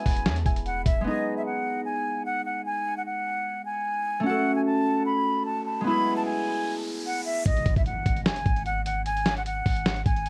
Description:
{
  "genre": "hip hop, trap",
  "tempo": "150 BPM",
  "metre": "4/4",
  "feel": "half-time",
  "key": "unclear",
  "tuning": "A4 = 441 Hz",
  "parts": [
    { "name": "reedy concert flute", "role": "melody", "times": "0.0-10.3 s", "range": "D#5 to B5", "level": "-30 LUFS", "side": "equal", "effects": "none" },
    { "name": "soft round pluck", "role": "second line", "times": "0.0-1.0 s", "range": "E5 to G#5", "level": "-43 LUFS", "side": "equal", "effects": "chorus, tape echo" },
    { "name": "concert harp", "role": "accompaniment", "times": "0.0-8.9 s", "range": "G#3 to A4", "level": "-32 LUFS", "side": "equal", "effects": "none" },
    { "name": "warm 808-style bass", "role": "bass", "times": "0.1-1.1, 7.5-10.3 s", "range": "E1 to E2", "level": "-32 LUFS", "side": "equal", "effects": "none" },
    { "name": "dusty soul sampler-style drum kit", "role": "drums", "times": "0.1-1.0, 7.5-10.3 s", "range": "hi-hat, kick drum, snare drum", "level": "-28 LUFS", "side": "equal", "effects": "vintage 12-bit sampler grit" },
    { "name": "riser and impact", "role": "sound effects", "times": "5.3-9.1 s", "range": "none", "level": "-41 LUFS", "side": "equal", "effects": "none" }
  ],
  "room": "light reverb",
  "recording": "none",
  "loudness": "-27 LUFS",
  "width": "mono",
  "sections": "0.0-1.1 A section; 1.1-7.5 B section; 7.5-10.3 C section",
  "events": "riser 5.3-7.5; impact 7.5-9.1",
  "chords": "0.0 E; 1.1 G#m; 4.3 F#m; 5.9 E; 7.5 Eadd9/G#"
}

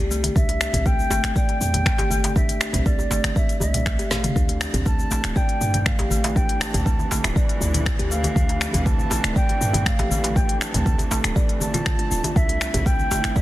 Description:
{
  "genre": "afro house",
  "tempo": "120 BPM",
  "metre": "4/4",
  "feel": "straight",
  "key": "D minor",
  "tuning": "A4 = 440 Hz",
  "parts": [
    { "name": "kalimba", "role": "arpeggios", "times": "0.0-13.4 s", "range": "A3 to D5", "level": "-28 LUFS", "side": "equal", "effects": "sidechain pumping, digital delay" },
    { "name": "warm 808-style bass", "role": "bass", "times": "0.0-13.3 s", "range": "D1 to G2", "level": "-26 LUFS", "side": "equal", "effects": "sidechain pumping" },
    { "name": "afro-pop drum kit", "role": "drums", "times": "0.1-13.4 s", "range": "finger snaps, hi-hat, shaker, snare drum, toms", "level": "-27 LUFS", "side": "left 2 dB", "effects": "soft clipping on snare" },
    { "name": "congas", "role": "percussion", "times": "0.1-13.3 s", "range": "none", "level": "-31 LUFS", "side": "left 1 dB", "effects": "none" },
    { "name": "djembe", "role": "percussion", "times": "0.2-13.4 s", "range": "none", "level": "-32 LUFS", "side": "right 1 dB", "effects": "none" },
    { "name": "mellow hollow concert flute", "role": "melody", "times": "0.4-13.4 s", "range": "D5 to A5", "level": "-28 LUFS", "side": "equal", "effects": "digital delay" },
    { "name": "electronic kick drum", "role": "drums", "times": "0.4-13.4 s", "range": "none", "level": "-21 LUFS", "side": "equal", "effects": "none" },
    { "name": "rich symphonic string section", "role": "sustained chords", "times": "4.4-13.4 s", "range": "C3 to E4", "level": "-33 LUFS", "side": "right 2 dB", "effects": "sidechain pumping" }
  ],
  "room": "light reverb, small room ambience",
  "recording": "dense, heavily limited modern master",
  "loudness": "-19 LUFS",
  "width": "side -15 dB against mid",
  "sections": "0.0-13.4 A section",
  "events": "drum fill 4.1",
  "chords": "0.0 C6; 4.4 Dmadd9; 12.4 C6"
}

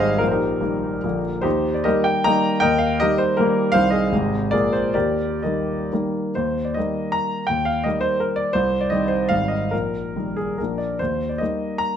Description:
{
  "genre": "classical, romantic triple-time dance for piano with dotted rhythms",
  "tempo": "120-176 BPM",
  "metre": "3/4",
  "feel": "rubato",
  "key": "Eb major",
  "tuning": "A4 = 440 Hz",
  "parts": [
    { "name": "clear grand piano", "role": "solo", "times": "0.0-12.0 s", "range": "Ab1 to Bb5", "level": "-19 LUFS", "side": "equal", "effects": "none" }
  ],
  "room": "moderate recital hall reverb, RT60 1.4 s",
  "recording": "close, detailed microphones",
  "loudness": "-19 LUFS",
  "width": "side -8 dB against mid",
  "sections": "0.0-6.4 A section; 6.4-12.0 A section",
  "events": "none",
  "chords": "0.2 Eb/Bb; 1.0 Bb; 1.5 Eb; 3.7 Cm; 4.1 Ab; 4.5 Bb7; 4.9 Eb; 8.6 Cm; 9.3 Abmaj7; 9.7 Eb/Bb; 10.6 Bb; 11.0 Eb"
}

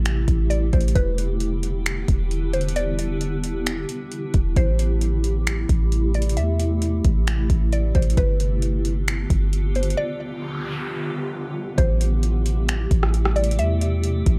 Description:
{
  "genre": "hip hop, atmospheric cloud-rap",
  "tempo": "133 BPM",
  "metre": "4/4",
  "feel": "half-time",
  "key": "A minor",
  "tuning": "A4 = 439 Hz",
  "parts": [
    { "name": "mallet-like synth pluck", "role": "melody", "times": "0.0-14.4 s", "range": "B4 to E5", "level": "-30 LUFS", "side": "equal", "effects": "chorus, phaser, tape echo" },
    { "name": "granular cloud pad", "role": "sustained chords", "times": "0.0-14.4 s", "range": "C3 to G4", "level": "-30 LUFS", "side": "equal", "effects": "built-in reverb, sidechain pumping" },
    { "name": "soft 808-style bass", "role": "bass", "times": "0.0-14.4 s", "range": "E1 to E2", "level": "-24 LUFS", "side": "equal", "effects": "none" },
    { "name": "smooth R&B drum kit", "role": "drums", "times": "0.1-14.4 s", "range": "finger snaps, hi-hat, kick drum, rim click", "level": "-25 LUFS", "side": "equal", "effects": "none" },
    { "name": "noise sweep", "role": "sound effects", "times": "10.3-11.8 s", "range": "none", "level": "-38 LUFS", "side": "equal", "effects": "none" }
  ],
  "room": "little or no reverb",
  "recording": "dark, warm production",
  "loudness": "-22 LUFS",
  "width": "mono",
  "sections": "0.0-11.8 A section; 11.8-14.4 B section",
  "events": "break 10.0-11.8; noise sweep 10.3-11.8",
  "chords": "0.0 Am7; 1.0 Em7; 4.6 Am7; 8.2 G7; 11.8 Am7"
}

